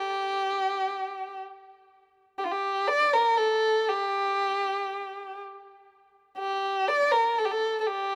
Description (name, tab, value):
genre	arabic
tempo	free time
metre	none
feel	none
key	unclear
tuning	A4 = 440 Hz
part	dark violin	solo	0.0-8.2 s	F4 to D5	-27 LUFS	equal	none
room	light reverb, studio reverb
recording	rough home demo mix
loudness	-27 LUFS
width	mono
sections	0.0-8.2 A section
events	none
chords	none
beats	free time